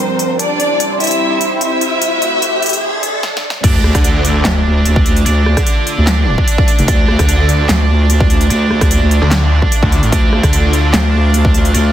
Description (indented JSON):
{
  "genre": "heavy wobble dubstep",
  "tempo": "148 BPM",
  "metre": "4/4",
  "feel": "half-time",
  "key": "D minor",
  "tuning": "A4 = 440 Hz",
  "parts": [
    { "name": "warm studio violin section", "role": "melody", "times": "0.0-3.2 s", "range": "C4 to E5", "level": "-15 LUFS", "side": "left 1 dB", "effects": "tape echo" },
    { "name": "lush unison pad", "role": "sustained chords", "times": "0.0-11.9 s", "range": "F3 to F5", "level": "-22 LUFS", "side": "right 1 dB", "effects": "chorus, phaser, sidechain pumping" },
    { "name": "riser, swell and sub drop", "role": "sound effects", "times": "0.0-5.3 s", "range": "none", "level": "-22 LUFS", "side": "equal", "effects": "none" },
    { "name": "big-room dance drum kit", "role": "drums", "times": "0.2-11.8 s", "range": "crash cymbal, handclaps, hi-hat, rim click, snare drum", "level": "-19 LUFS", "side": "equal", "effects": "overdrive, studio reverb" },
    { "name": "scooped high-gain guitar", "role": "stabs", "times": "3.6-11.9 s", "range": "D4 to D5", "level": "-19 LUFS", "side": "right 4 dB", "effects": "distortion, tape echo" },
    { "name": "wobble bass", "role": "bass", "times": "3.6-11.9 s", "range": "F1 to D2", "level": "-12 LUFS", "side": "equal", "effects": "chorus, overdrive" },
    { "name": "electronic kick drum", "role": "drums", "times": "3.6-11.5 s", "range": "none", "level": "-13 LUFS", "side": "equal", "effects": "overdrive, studio reverb" },
    { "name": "snarling distorted saw bass", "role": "bass", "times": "3.9-4.4, 7.2-10.9 s", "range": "A1 to D2", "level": "-12 LUFS", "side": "equal", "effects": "overdrive" }
  ],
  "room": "light reverb, digital ambience",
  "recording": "dense, heavily limited modern master, high-pass filter",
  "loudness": "-10 LUFS",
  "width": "side -11 dB against mid",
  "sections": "0.0-3.6 A section; 3.6-11.9 B section",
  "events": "build-up 0.0-3.6; riser 0.0-3.2; filter sweep on analog synth pad 0.0-3.6; swell 2.8-3.6; drum fill 3.2-3.6; drop 3.6-11.9; impact 3.6-5.3",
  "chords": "0.4 C/G; 2.0 F; 3.6 Dm",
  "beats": "| 0.40 0.80 1.21 1.61 | 2.02 2.42 2.83 3.23 | 3.64 4.04 4.45 4.85 | 5.26 5.67 6.07 6.48 | 6.88 7.29 7.69 8.10 | 8.50 8.91 9.31 9.72 | 10.12 10.53 10.94 11.34 | 11.75"
}